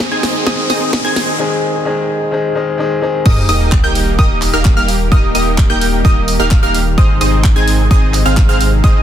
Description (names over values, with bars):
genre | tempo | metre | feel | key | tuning
EDM, festival progressive house | 129 BPM | 4/4 | straight | Eb major | A4 = 440 Hz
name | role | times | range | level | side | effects
bright grand piano | accompaniment | 0.0-3.3 s | Eb3 to Ab4 | -17 LUFS | left 3 dB | sidechain pumping, digital delay
lush unison pad | sustained chords | 0.0-9.0 s | C3 to Eb5 | -23 LUFS | left 1 dB | chorus, sidechain pumping
wide unison pluck | arpeggios | 0.0-9.0 s | Eb6 to Ab6 | -20 LUFS | equal | sidechain pumping, digital delay
supersaw stab | riff | 0.0-9.0 s | Bb3 to Ab5 | -19 LUFS | right 1 dB | sidechain pumping, low-pass filter, digital delay
electronic kick drum | drums | 0.0-8.9 s | none | -11 LUFS | equal | high-pass filter on kick, high-pass filter on room
house drum kit | drums | 0.0-8.7 s | crash cymbal, handclaps, hi-hat, snare drum | -21 LUFS | equal | soft clipping on snare
riser and sub drop | sound effects | 0.0-5.1 s | none | -20 LUFS | equal | none
saturated sub bass | bass | 3.3-9.0 s | Eb1 to Ab1 | -16 LUFS | equal | sidechain pumping
room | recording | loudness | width
light reverb | dense, heavily limited modern master | -10 LUFS | side -10 dB against mid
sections
0.0-3.3 A section; 3.3-9.0 B section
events
build-up 0.0-3.3; drum fill 0.0-1.4; riser 0.0-1.4; drop 3.3-9.0; impact 3.3-5.1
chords
0.0 Ab; 3.3 Eb; 7.0 Ab